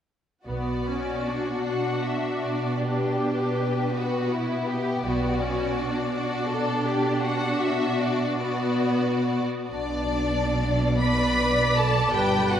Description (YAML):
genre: classical, slow romantic movement for symphony orchestra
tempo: 44-57 BPM (dotted quarters)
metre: 6/8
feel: rubato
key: B minor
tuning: A4 = 440 Hz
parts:
  - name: rich symphonic violin section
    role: melody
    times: 0.5-12.6 s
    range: B4 to B5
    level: -30 LUFS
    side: left 2 dB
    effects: none
  - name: warm symphonic violin section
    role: second line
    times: 0.5-12.6 s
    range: D4 to B4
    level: -28 LUFS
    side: left 3 dB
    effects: none
  - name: warm symphonic viola section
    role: accompaniment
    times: 0.5-12.6 s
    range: B3 to D5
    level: -28 LUFS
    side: right 1 dB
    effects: none
  - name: rich symphonic cello section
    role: bass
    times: 0.5-12.6 s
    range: G2 to B2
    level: -29 LUFS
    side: right 2 dB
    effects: none
  - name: rich symphonic double bass section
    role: bass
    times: 0.5-1.2, 5.0-5.7, 9.7-12.6 s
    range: G1 to B1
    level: -30 LUFS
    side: right 2 dB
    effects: none
room: wet church reverb, RT60 2.6 s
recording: none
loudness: -22 LUFS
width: side -9 dB against mid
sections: 0.5-9.7 A section; 9.7-12.6 B section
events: none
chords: 0.5 Bm; 2.8 Em/B (rootless); 5.1 Bm